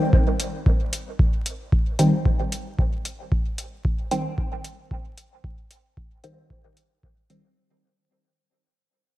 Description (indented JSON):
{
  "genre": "dub techno",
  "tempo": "113 BPM",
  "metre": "4/4",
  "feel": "straight",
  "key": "C minor",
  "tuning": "A4 = 442 Hz",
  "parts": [
    { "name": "warbly dusty pluck", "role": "riff", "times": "0.0-6.3 s", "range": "Eb4 to G5", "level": "-32 LUFS", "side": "left 2 dB", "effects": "chorus, sidechain pumping, dub echo" },
    { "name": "electronic kick drum", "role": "drums", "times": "0.1-7.1 s", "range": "none", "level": "-21 LUFS", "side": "equal", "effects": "none" },
    { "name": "electronic hi-hat", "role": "drums", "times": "0.4-7.4 s", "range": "none", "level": "-32 LUFS", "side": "equal", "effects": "dub echo" },
    { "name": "filtered dub chord stab", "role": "stabs", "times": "2.0-7.4 s", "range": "Eb3 to C4", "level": "-25 LUFS", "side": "equal", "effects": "phaser, vintage 12-bit sampler grit, sidechain pumping, dub echo" }
  ],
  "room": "moderate lush hall reverb, RT60 2.0 s",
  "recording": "bright 1980s-style digital production, vinyl crackle",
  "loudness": "-21 LUFS",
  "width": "side -15 dB against mid",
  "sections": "0.0-7.6 A section",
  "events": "fade-out 0.0-7.6; filter sweep on synth pluck 0.0-7.6",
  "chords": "0.0 Cm"
}